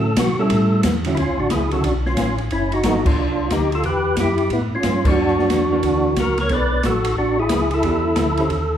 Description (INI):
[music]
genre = soul jazz organ trio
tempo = 180 BPM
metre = 4/4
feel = swing 64% on 8ths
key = D major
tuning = A4 = 440 Hz
[part]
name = percussive tonewheel organ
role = melody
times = 0.0-8.8 s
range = B3 to D5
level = -19 LUFS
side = equal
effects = slow rotary speaker, overdrive, chorus vibrato
[part]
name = hollow-body jazz guitar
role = accompaniment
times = 0.0-3.0, 5.0-8.5 s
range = D3 to C#5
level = -24 LUFS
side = right 2 dB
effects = none
[part]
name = mellow tonewheel organ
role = bass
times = 0.0-8.8 s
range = F#1 to B2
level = -23 LUFS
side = equal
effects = overdrive, chorus vibrato, slow rotary speaker
[part]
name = open jazz drum kit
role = drums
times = 0.2-8.6 s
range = crash cymbal, hi-hat, kick drum, ride cymbal, snare drum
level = -23 LUFS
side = equal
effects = none
[sound]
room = wet recital hall reverb, RT60 1.2 s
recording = recorded in a church or concert hall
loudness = -16 LUFS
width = side -9 dB against mid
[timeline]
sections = 0.0-1.2 A section; 1.2-8.8 B section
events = tonewheel organ solo 0.0-1.2; band accent 3.0, 5.0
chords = 0.0 Dmaj9 (rootless); 0.5 A7; 1.2 Dmaj9; 2.5 F#m11; 3.2 F5; 3.8 Emadd9; 5.2 F#7b13; 6.5 Bm9; 7.8 Em7